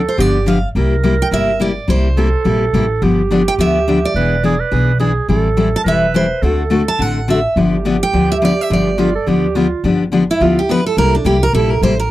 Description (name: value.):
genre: acoustic string swing (jazz manouche).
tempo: 211 BPM.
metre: 4/4.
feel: swing 58% on 8ths.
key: G mixolydian.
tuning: A4 = 440 Hz.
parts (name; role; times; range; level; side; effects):
growling clarinet; second line; 0.0-9.8 s; F4 to B4; -20 LUFS; right 5 dB; none.
upright bass; bass; 0.0-12.1 s; E1 to D2; -18 LUFS; equal; none.
picked steel-string acoustic guitar; melody; 0.1-12.1 s; D4 to A5; -18 LUFS; right 2 dB; none.
picked steel-string acoustic guitar; accompaniment; 0.2-11.9 s; C3 to A4; -16 LUFS; left 3 dB; none.
room: little or no reverb.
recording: dry, close 1970s-style studio recording.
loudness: -12 LUFS.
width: side -15 dB against mid.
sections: 0.0-9.8 A section; 9.8-12.1 B section.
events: steel-string acoustic guitar solo 9.8-12.1.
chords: 0.2 G7; 0.7 C7; 3.0 G7; 4.2 E7; 5.3 Am7; 6.4 D7; 7.6 G7; 11.0 C7.